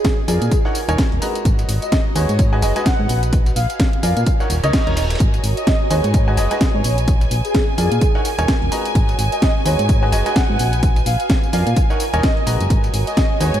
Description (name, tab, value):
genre	piano house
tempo	128 BPM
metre	4/4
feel	swing 58% on 16ths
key	G# minor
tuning	A4 = 441 Hz
part	airy dreamy lead	melody	0.0-13.6 s	G#4 to F#5	-24 LUFS	equal	chorus, diffuse ambient delay
part	dusty soul sampler-style drum kit	drums	0.0-13.5 s	hi-hat, snare drum	-36 LUFS	equal	none
part	electronic kick drum	drums	0.0-13.3 s	none	-18 LUFS	equal	none
part	house drum kit	drums	0.0-13.6 s	hi-hat, snare drum, tambourine	-25 LUFS	equal	overdrive
part	granular cloud pad	texture	0.0-13.6 s	E#4 to A#5	-29 LUFS	right 1 dB	built-in reverb, sidechain pumping
part	clear baby grand piano	riff	0.3-13.6 s	D#3 to A#5	-25 LUFS	equal	sidechain pumping, diffuse ambient delay
part	solid FM bass	bass	0.3-13.6 s	D#1 to A#2	-19 LUFS	equal	sidechain pumping
part	reverse cymbal	sound effects	4.5-5.2 s	none	-32 LUFS	right 1 dB	none
part	rich studio violin section	sustained chords	5.2-13.6 s	G#5	-27 LUFS	equal	sidechain pumping
room	light reverb, digital ambience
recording	none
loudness	-15 LUFS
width	side -11 dB against mid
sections	0.0-13.6 A section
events	reverse cymbal 4.5-5.2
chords	0.0 A#7; 0.5 D#m7; 1.5 G#m7; 3.3 A#7; 4.3 D#m7; 5.2 G#m7; 7.1 A#7; 8.0 D#m7; 9.0 G#m7; 10.8 A#7; 11.8 D#m7; 12.7 G#m7